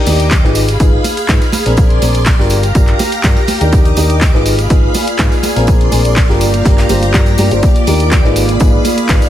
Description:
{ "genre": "piano house", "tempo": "123 BPM", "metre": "4/4", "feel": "straight", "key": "Eb major", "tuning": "A4 = 440 Hz", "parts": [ { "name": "string machine, violins", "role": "sustained chords", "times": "0.0-9.3 s", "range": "G4 to D6", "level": "-19 LUFS", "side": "equal", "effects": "ensemble chorus, sidechain pumping" }, { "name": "clear concert grand piano", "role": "riff", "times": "0.0-9.2 s", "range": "C4 to C5", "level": "-18 LUFS", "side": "left 2 dB", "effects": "sidechain pumping, low-pass filter, ping-pong delay" }, { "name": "hollow-body short-scale fingered electric bass", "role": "bass", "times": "0.1-9.2 s", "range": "G1 to Ab2", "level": "-14 LUFS", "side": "equal", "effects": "sidechain pumping" }, { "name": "modern studio drum kit", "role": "drums", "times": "0.1-9.3 s", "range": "hi-hat, snare drum", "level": "-30 LUFS", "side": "right 3 dB", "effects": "none" }, { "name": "punchy analog drum machine", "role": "drums", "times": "0.1-9.3 s", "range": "handclaps, hi-hat", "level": "-20 LUFS", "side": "equal", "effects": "none" }, { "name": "tambourine and congas", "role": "percussion", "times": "0.1-9.3 s", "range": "none", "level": "-23 LUFS", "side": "right 3 dB", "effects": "none" }, { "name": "electronic kick drum", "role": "drums", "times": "0.3-9.2 s", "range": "none", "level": "-11 LUFS", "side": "equal", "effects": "none" }, { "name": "airy breathy pad", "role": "texture", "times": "4.5-9.3 s", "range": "Bb3 to D5", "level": "-19 LUFS", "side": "right 1 dB", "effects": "chorus, sidechain pumping" } ], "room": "small room ambience", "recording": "none", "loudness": "-9 LUFS", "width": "side -12 dB against mid", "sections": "0.0-9.3 A section", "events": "none", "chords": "0.0 Ebmaj7; 0.6 Abm6; 1.8 Bb9; 2.5 Gm7; 3.7 Ebmaj7; 4.5 Abm6; 5.7 Bb9; 6.4 Gm7; 7.6 Ebmaj7; 8.4 Abm6" }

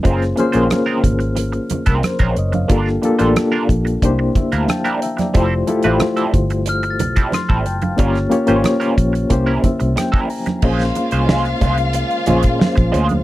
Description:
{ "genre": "lush 1970s-style soul", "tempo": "91 BPM", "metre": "4/4", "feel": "straight", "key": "unclear", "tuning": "A4 = 440 Hz", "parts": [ { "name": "reed electric piano", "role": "accompaniment", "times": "0.0-13.2 s", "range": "A3 to C6", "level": "-18 LUFS", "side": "left 2 dB", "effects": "fast tremolo" }, { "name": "electric guitar at the edge of break-up", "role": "riff", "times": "0.0-13.1 s", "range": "G3 to Db5", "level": "-23 LUFS", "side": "right 4 dB", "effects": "wah" }, { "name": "vintage muted fingered electric bass", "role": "bass", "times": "0.1-13.2 s", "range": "F1 to Bb2", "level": "-19 LUFS", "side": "equal", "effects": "none" }, { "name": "damped 70s drum kit", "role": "drums", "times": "0.1-13.2 s", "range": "crash cymbal, hi-hat, kick drum, rim click, snare drum", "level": "-18 LUFS", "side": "equal", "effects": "none" }, { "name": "congas", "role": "percussion", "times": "0.1-13.2 s", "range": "none", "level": "-24 LUFS", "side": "right 4 dB", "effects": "none" }, { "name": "glockenspiel with soft plastic mallets", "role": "texture", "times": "0.4-1.9, 6.7-12.1 s", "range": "C6 to A6", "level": "-30 LUFS", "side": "left 2 dB", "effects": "none" }, { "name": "warm studio string section", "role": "second line", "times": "10.6-13.2 s", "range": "F4 to F5", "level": "-22 LUFS", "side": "left 3 dB", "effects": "none" }, { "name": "clear French horn section", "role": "sustained chords", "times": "10.7-13.2 s", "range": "Ab3 to C5", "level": "-28 LUFS", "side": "right 2 dB", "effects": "none" } ], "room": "light reverb", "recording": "dry, close 1970s-style studio recording", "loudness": "-14 LUFS", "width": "side -16 dB against mid", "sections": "0.0-10.6 A section; 10.6-13.2 B section", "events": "reed electric piano fill 4.0-5.3, 9.3-10.6", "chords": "0.1 Gbmaj9#11; 2.7 Gm7; 4.0 C9; 5.3 Fmaj9; 8.0 Gm7b5; 9.3 C7b9; 10.6 Bbm9" }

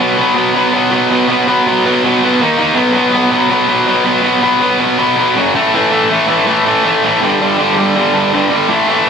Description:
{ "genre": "punk", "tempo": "162 BPM", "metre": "4/4", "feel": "straight", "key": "unclear", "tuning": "A4 = 441 Hz", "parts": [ { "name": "tight distorted guitar", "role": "solo", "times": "0.0-9.1 s", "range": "F#2 to D#4", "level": "-10 LUFS", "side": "equal", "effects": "distortion" } ], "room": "moderate studio reverb, RT60 0.6 s", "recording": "none", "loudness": "-10 LUFS", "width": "side -6 dB against mid", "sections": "0.0-5.7 A section; 5.7-9.1 B section", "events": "none", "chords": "0.0 B5; 2.4 D#5; 2.8 B5; 5.4 F#5; 5.6 A5; 7.2 G5" }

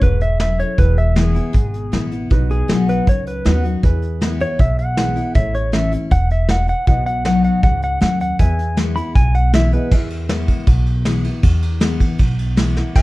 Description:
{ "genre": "honky-tonk and classic country", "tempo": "158 BPM", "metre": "4/4", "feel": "straight", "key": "E major", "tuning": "A4 = 436 Hz", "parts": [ { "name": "pedal steel guitar", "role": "melody", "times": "0.0-9.9, 13.0 s", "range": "G#4 to B5", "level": "-22 LUFS", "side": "equal", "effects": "none" }, { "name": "picked steel-string acoustic guitar", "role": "accompaniment", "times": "0.0-13.0 s", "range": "E2 to F#4", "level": "-22 LUFS", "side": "left 3 dB", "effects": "none" }, { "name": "warm upright piano", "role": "accompaniment", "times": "0.0-13.0 s", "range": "D#4 to E5", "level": "-32 LUFS", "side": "right 5 dB", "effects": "none" }, { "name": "upright bass", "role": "bass", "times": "0.0-13.0 s", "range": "E1 to E2", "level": "-18 LUFS", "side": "equal", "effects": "none" }, { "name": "vintage brush drum kit", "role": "drums", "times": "0.0-13.0 s", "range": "crash cymbal, hi-hat, kick drum, ride cymbal, snare drum", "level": "-16 LUFS", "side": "equal", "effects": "none" } ], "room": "light reverb", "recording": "dark, warm production", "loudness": "-14 LUFS", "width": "side -19 dB against mid", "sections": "0.0-9.9 A section; 9.9-13.0 B section", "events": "pedal steel guitar solo 0.0-9.9; drum fill 12.8", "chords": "0.0 A; 0.8 E; 2.3 B; 3.8 E; 5.4 A; 6.9 B; 8.4 E" }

